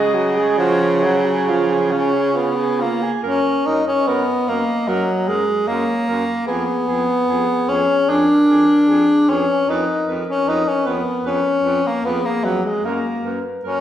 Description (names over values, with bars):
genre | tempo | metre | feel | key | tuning
classical, lyrical piece for single-reed quartet | 75 BPM | 4/4 | uneven beats, rubato | F# major | A4 = 441 Hz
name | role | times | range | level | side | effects
dark clarinet | melody | 0.0-13.8 s | F#4 to D#5 | -28 LUFS | left 2 dB | none
warm alto saxophone | second line | 0.0-13.8 s | E#4 to B4 | -26 LUFS | right 5 dB | none
warm tenor saxophone | accompaniment | 0.0-13.8 s | E#3 to D#4 | -17 LUFS | left 1 dB | none
warm baritone saxophone | bass | 0.0-13.8 s | E#2 to C#3 | -24 LUFS | right 2 dB | none
room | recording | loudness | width
wet recital hall reverb, RT60 1.5 s | heard from further back in the room | -16 LUFS | side -11 dB against mid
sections
0.0-3.2 A section; 3.2-13.8 B section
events
none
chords
0.0 C#sus4; 1.5 C#; 3.2 F#; 6.5 Fdim7; 9.7 C#13/E#; 12.8 F#